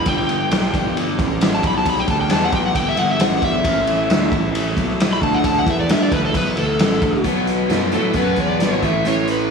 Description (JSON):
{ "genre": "blues rock power trio and southern rock", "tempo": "134 BPM", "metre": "4/4", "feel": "straight", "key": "unclear", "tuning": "A4 = 439 Hz", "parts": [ { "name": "overdriven slide guitar", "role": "melody", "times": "0.0-9.5 s", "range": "A4 to B5", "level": "-21 LUFS", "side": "left 2 dB", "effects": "slapback echo, plate reverb" }, { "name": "tonewheel organ", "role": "sustained chords", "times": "0.0-7.2 s", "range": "G3 to E#5", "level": "-28 LUFS", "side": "right 4 dB", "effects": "overdrive, slow rotary speaker" }, { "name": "fuzz picked electric bass", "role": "bass", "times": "0.0-9.5 s", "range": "G1 to A2", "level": "-21 LUFS", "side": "right 1 dB", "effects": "overdrive" }, { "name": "raw garage drum kit", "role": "drums", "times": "0.1-9.4 s", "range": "hi-hat, kick drum, ride cymbal, snare drum", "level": "-20 LUFS", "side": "equal", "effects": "none" }, { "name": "overdriven electric guitar", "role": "riff", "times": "7.2-9.5 s", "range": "A2 to B3", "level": "-18 LUFS", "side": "left 1 dB", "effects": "none" } ], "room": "moderate studio reverb, RT60 0.6 s", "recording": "studio reverb", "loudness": "-16 LUFS", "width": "side -5 dB against mid", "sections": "0.0-7.3 A section; 7.3-9.5 B section", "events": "electric slide guitar solo 0.0-7.3", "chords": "0.1 G5; 3.7 A5; 7.3 Bm; 8.8 A5", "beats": "| 0.07 0.52 0.97 1.42 | 1.86 2.31 2.76 3.21 | 3.66 4.11 4.55 5.00 | 5.45 5.90 6.35 6.80 | 7.25 7.71 8.16 8.61 | 9.06" }